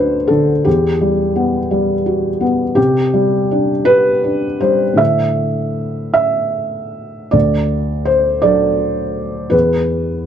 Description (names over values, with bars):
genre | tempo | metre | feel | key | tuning
neoclassical minimalist piano | 50-57 BPM (dotted quarters) | 6/8 | rubato | D mixolydian | A4 = 440 Hz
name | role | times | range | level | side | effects
felt-muted upright piano | solo | 0.0-10.3 s | D2 to E5 | -13 LUFS | equal | none
room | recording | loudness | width
little or no reverb | dry, close 1970s-style studio recording | -13 LUFS | side -8 dB against mid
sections
0.0-7.3 A section; 7.3-10.3 B section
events
none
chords
0.0 D; 0.7 Emadd9; 2.8 Csus2; 5.0 Asus4; 7.3 D; 9.5 E5